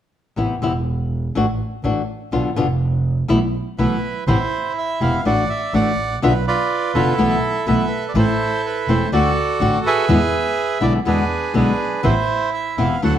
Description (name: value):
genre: tango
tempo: 124 BPM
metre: 4/4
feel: rubato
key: A harmonic minor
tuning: A4 = 440 Hz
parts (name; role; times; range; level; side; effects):
- flamenco guitar; accompaniment; 0.4-13.2 s; B2 to F#4; -20 LUFS; left 2 dB; none
- dark double bass; bass; 0.4-13.2 s; E1 to E2; -22 LUFS; right 1 dB; none
- bandoneon; melody; 3.8-13.2 s; D4 to F#5; -20 LUFS; right 4 dB; none
room: moderate large studio reverb, RT60 1.2 s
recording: none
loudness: -17 LUFS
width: side -10 dB against mid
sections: 0.4-4.3 A section; 4.3-13.2 B section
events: none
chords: 0.4 Amadd9; 1.4 Dadd9/A; 2.3 Bdim; 3.3 Esus4/B; 4.3 Amadd9; 5.3 Dadd9/A; 6.2 Bdim; 7.2 Esus4/B; 8.2 Am; 9.1 D7; 10.1 E7; 12.0 Amadd9